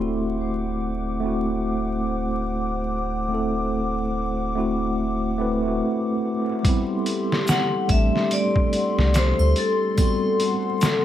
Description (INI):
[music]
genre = trip hop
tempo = 72 BPM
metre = 4/4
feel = swing 59% on 16ths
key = A dorian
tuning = A4 = 440 Hz
[part]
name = mellow tine electric piano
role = accompaniment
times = 0.0-11.0 s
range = G3 to B4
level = -24 LUFS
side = equal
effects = medium stereo tremolo, harmonic tremolo, vintage 12-bit sampler grit, tape echo
[part]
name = dark analog pad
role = sustained chords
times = 0.0-11.0 s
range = G4 to D6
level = -28 LUFS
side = left 1 dB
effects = chorus
[part]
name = soft dub sub bass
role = bass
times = 0.0-9.5 s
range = D1 to D2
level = -26 LUFS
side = equal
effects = none
[part]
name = trip hop sampler-style drum kit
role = drums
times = 6.6-11.0 s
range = hi-hat, kick drum, snare drum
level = -23 LUFS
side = equal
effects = studio reverb
[part]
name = vibraphone with hard mallets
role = melody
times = 7.5-11.0 s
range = A4 to F#5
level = -26 LUFS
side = left 2 dB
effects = vintage 12-bit sampler grit, tape echo
[part]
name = egg shaker and triangle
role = percussion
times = 7.5-11.0 s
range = none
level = -40 LUFS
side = right 2 dB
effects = none
[sound]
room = light reverb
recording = vinyl crackle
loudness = -20 LUFS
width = side -11 dB against mid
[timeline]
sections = 0.0-6.6 A section; 6.6-11.0 B section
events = none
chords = 0.0 D7; 6.6 Am7